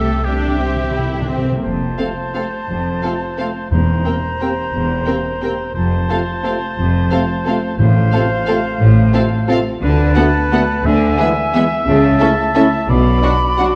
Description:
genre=classical, orchestral ballroom waltz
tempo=176 BPM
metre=3/4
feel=uneven beats, rubato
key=F major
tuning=A4 = 440 Hz
part: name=rich symphonic violin section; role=melody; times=0.0-13.7 s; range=E5 to G5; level=-32 LUFS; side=equal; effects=none
part: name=clear oboe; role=second line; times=0.0-13.8 s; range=G4 to E5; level=-25 LUFS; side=equal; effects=none
part: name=warm symphonic violin section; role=second line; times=0.0-13.7 s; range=F#4 to Bb4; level=-28 LUFS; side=equal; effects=none
part: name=rich symphonic viola section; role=accompaniment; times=0.0-13.7 s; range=A3 to E4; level=-25 LUFS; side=equal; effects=none
part: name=clear symphonic cello section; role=bass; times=0.0-13.2 s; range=E2 to D3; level=-22 LUFS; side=equal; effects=none
part: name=rich symphonic double bass section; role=bass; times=0.0-13.2 s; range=E1 to D2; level=-22 LUFS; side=equal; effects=none
part: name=timpani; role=percussion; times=0.0-1.6, 3.7-4.2, 7.8-8.3 s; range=E2 to C3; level=-23 LUFS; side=equal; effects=none
part: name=bright concert flute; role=second line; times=1.6-13.8 s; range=F5 to B5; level=-27 LUFS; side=equal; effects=none
part: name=mellow French horn section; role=sustained chords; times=2.0-13.7 s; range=B3 to G4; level=-26 LUFS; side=equal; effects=none
part: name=warm trombone section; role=sustained chords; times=2.0-13.7 s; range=B2 to Bb3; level=-28 LUFS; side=equal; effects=none
room=wet scoring stage reverb, RT60 1.8 s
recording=dark, warm production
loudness=-16 LUFS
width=mono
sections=0.0-1.6 A section; 1.6-13.8 B section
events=timpani fill 0.0-1.6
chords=0.0 C; 1.6 F; 3.7 C7/E; 5.8 F; 7.8 F/A; 9.8 Bm7/D; 10.9 E7/D; 11.9 A/C#; 12.9 Bm

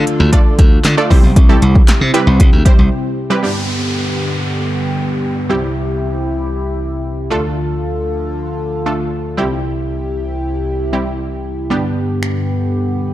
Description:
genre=dance-pop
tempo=116 BPM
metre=4/4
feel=straight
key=C major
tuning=A4 = 441 Hz
part: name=wide unison pluck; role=accompaniment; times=0.0-13.1 s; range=G3 to D5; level=-19 LUFS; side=right 2 dB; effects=sidechain pumping
part: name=chorused pulse-width pad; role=sustained chords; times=0.0-13.1 s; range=C2 to A4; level=-19 LUFS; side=equal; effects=sidechain pumping
part: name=glassy slap bass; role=bass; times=0.0-2.9 s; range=B1 to D3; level=-13 LUFS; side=equal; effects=sidechain pumping
part: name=deep house drum kit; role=drums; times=0.1-2.8, 12.2-12.3 s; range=finger snaps, handclaps, hi-hat, kick drum, snare drum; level=-10 LUFS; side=equal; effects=none
part: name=group handclap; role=percussion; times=0.8-2.0 s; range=none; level=-32 LUFS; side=left 4 dB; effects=none
part: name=downlifter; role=sound effects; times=3.4-7.6 s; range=none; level=-26 LUFS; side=equal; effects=none
room=light reverb, digital ambience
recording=dark, warm production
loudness=-13 LUFS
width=side -14 dB against mid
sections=0.0-3.4 A section; 3.4-13.1 B section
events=break 2.9-3.4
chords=0.0 Dm; 1.1 C; 3.4 G; 5.5 C; 7.3 Dm; 9.4 C; 11.7 G

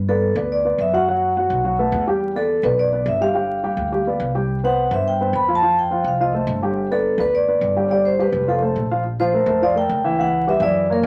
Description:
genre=jazz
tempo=211 BPM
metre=4/4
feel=straight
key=G major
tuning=A4 = 439 Hz
part: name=upright bass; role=bass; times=0.0-11.1 s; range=F1 to G2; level=-28 LUFS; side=equal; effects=none
part: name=vibraphone with medium mallets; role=melody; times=0.1-11.1 s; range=A4 to B5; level=-22 LUFS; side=equal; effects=none
part: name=dark upright piano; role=accompaniment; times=0.1-11.1 s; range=E3 to G5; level=-24 LUFS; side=equal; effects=none
room=wet club reverb, RT60 0.6 s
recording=vinyl crackle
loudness=-19 LUFS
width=mono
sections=0.0-9.0 A section; 9.0-11.1 B section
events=none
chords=0.0 Gmaj9; 1.1 B5; 2.2 Em7; 3.3 G7; 4.5 C5; 5.6 F9; 6.8 G; 8.5 F; 9.0 Bbsus2; 10.2 C#m7b5

